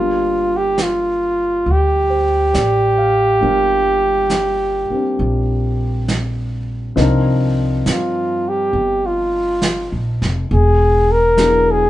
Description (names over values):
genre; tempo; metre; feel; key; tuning
jazz ballad; 68 BPM; 4/4; swing 68% on 8ths; G minor, C minor from 7.0 s; A4 = 440 Hz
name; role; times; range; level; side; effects
mellow flugelhorn; melody; 0.0-11.9 s; F4 to Bb4; -16 LUFS; equal; none
dark concert grand piano; accompaniment; 0.0-11.9 s; F3 to F5; -23 LUFS; left 2 dB; none
upright bass; bass; 0.0-11.9 s; E1 to G2; -19 LUFS; equal; none
vintage brush drum kit; drums; 0.8-11.9 s; brushed snare drum, hi-hat, snare drum; -23 LUFS; right 2 dB; none
room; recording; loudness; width
moderate studio reverb, RT60 0.6 s; band playing live in one room, nothing above 10.9 kHz; -14 LUFS; side -14 dB against mid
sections
0.0-7.0 A section; 7.0-11.9 B section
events
break 6.1-7.0; flugelhorn solo 7.0-11.9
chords
0.0 Gm7; 7.0 Cm11; 10.5 E9